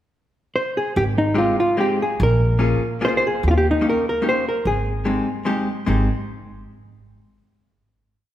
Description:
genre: musette waltz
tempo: 147 BPM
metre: 3/4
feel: straight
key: Ab major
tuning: A4 = 438 Hz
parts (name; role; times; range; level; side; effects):
- hollow-body jazz guitar; melody; 0.6-5.4 s; Eb4 to C5; -20 LUFS; equal; none
- upright bass; bass; 1.0-6.1 s; Ab1 to Eb2; -21 LUFS; equal; none
- vintage hollow-body jazz guitar; accompaniment; 1.3-6.1 s; Ab3 to Ab4; -24 LUFS; left 2 dB; none
room: moderate recital hall reverb, RT60 1.8 s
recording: recorded in a church or concert hall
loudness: -18 LUFS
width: side -12 dB against mid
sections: 0.0-1.0 pickup bar; 1.0-5.9 A section; 5.9-7.1 final chord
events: none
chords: 0.0 N.C.; 1.0 Abmaj7; 2.2 Bbm7; 3.4 Eb7; 4.6 Abmaj7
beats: 0.15 0.55 | 0.96 1.37 1.79 | 2.20 2.61 3.02 | 3.43 3.84 4.24 | 4.65 5.06 5.46 | 5.88

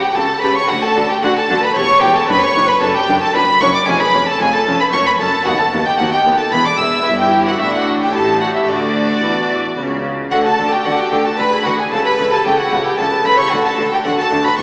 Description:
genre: classical, baroque-style concerto movement with solo episodes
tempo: 113 BPM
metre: 3/4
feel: straight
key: D major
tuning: A4 = 440 Hz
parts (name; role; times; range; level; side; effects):
- clear chamber violin section; melody; 0.0-14.6 s; D5 to E6; -22 LUFS; equal; none
- clear violin; melody; 0.0-14.6 s; D5 to E6; -20 LUFS; equal; none
- rich chamber violin section; second line; 0.0-14.6 s; D4 to E5; -22 LUFS; equal; none
- harpsichord; accompaniment; 0.0-14.6 s; D#2 to D5; -27 LUFS; equal; none
- rich chamber viola section; accompaniment; 0.2-14.6 s; B3 to B4; -25 LUFS; equal; none
- rich chamber double bass section; bass; 0.2-14.6 s; E1 to E2; -28 LUFS; equal; none
- rich studio cello section; bass; 0.2-14.6 s; D#2 to E3; -26 LUFS; equal; none
room: wet church reverb, RT60 3.0 s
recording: recorded in a church or concert hall, vinyl crackle, small speaker sound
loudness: -15 LUFS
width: mono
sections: 0.0-10.3 A section; 10.3-14.6 A section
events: none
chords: 0.0 A7/C#; 0.7 D; 1.8 A7/E; 2.3 D/F#; 3.9 C#/E#; 4.9 F#m; 5.5 B/D#; 6.5 E5; 7.1 Em/G; 7.6 D/A; 8.1 A7; 8.7 D; 11.4 E7/D; 11.9 A7/C#; 13.5 D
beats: 0.16 | 0.69 1.23 1.76 | 2.29 2.81 3.35 | 3.87 4.40 4.93 | 5.47 6.00 6.53 | 7.07 7.60 8.14 | 8.68 9.23 9.77 | 10.31 10.85 11.39 | 11.92 12.45 12.98 | 13.52 14.05 14.58

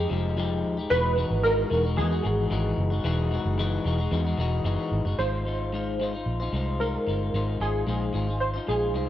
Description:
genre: indie pop, bedroom pop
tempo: 112 BPM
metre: 4/4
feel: straight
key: Ab major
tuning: A4 = 440 Hz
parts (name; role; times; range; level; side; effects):
- warm analog keys; melody; 0.0-9.1 s; Ab4 to C5; -28 LUFS; right 1 dB; ensemble chorus, slapback echo
- electric guitar at the edge of break-up; accompaniment; 0.0-9.1 s; E3 to C5; -29 LUFS; left 4 dB; wide subtle chorus, warbly pitch drift
- vintage muted fingered electric bass; bass; 0.0-9.1 s; Eb1 to E2; -27 LUFS; equal; none
room: light reverb, digital ambience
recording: worn, warbling old tape, cassette tape, warbly pitch drift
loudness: -24 LUFS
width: side -12 dB against mid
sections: 0.0-5.2 A section; 5.2-9.1 B section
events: none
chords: 0.0 Fm9; 0.9 Emaj9; 5.2 Ab6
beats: 0.37 | 0.90 1.44 1.98 2.51 | 3.05 3.58 4.12 4.66 | 5.19 5.73 6.27 6.80 | 7.34 7.88 8.42 8.96

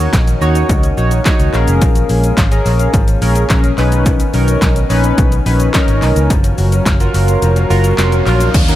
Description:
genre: dance-pop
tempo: 107 BPM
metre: 4/4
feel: straight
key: unclear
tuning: A4 = 441 Hz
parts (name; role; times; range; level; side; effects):
- chorused polysynth; accompaniment; 0.0-8.8 s; Db4 to Db5; -18 LUFS; equal; sidechain pumping
- lush unison pad; sustained chords; 0.0-8.8 s; Eb3 to F5; -22 LUFS; equal; chorus, sidechain pumping
- kora; arpeggios; 0.0-8.8 s; Eb3 to F5; -24 LUFS; left 6 dB; sidechain pumping, tape echo
- vintage muted fingered electric bass; bass; 0.0-8.8 s; F1 to Eb2; -14 LUFS; equal; sidechain pumping
- punchy analog drum machine; drums; 0.1-8.8 s; crash cymbal, handclaps, hi-hat, kick drum, shaker, snare drum; -14 LUFS; equal; overdrive
- riser and downlifter; sound effects; 7.4-8.8 s; none; -25 LUFS; equal; none
room: little or no reverb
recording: echo-heavy mix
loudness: -10 LUFS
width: side -13 dB against mid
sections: 0.0-8.5 A section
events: riser 7.4-8.5; kick muted 7.4-8.5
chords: 0.0 Ebm7; 1.5 Bbm7; 3.8 Badd9; 6.3 Gbmaj7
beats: 0.13 0.69 1.25 | 1.82 2.38 2.94 3.50 | 4.06 4.62 5.18 5.74 | 6.30 6.86 7.42 7.98 | 8.54

